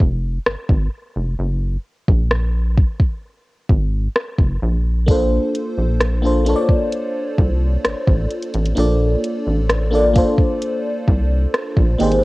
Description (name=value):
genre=contemporary R&B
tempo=65 BPM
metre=4/4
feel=straight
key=unclear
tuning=A4 = 438 Hz
part: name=rubbery square bass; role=bass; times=0.0-12.2 s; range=F1 to C2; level=-18 LUFS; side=equal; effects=none
part: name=smooth R&B drum kit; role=drums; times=0.0-12.2 s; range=hi-hat, kick drum, rim click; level=-17 LUFS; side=equal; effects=cassette tape
part: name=FM electric piano with soft pad layer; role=accompaniment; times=5.1-12.2 s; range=Bb3 to D5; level=-19 LUFS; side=equal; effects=chorus, phaser, cassette tape
room=little or no reverb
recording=home recording on cassette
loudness=-16 LUFS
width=side -20 dB against mid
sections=0.0-12.2 A section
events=none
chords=0.0 Gbmaj9; 4.6 Bbmaj9